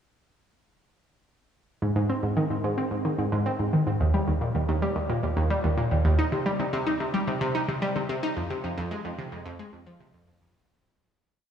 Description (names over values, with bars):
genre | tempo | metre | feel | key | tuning
ambient | 110 BPM | 4/4 | straight | Ab major | A4 = 440 Hz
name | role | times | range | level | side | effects
analog pluck | solo | 1.8-10.5 s | Eb2 to Eb4 | -24 LUFS | equal | chorus, tape echo
room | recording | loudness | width
wet lush hall reverb, RT60 3.0 s | studio reverb | -24 LUFS | side -8 dB against mid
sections
1.8-10.5 A section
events
fade-out 7.6-10.5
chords
none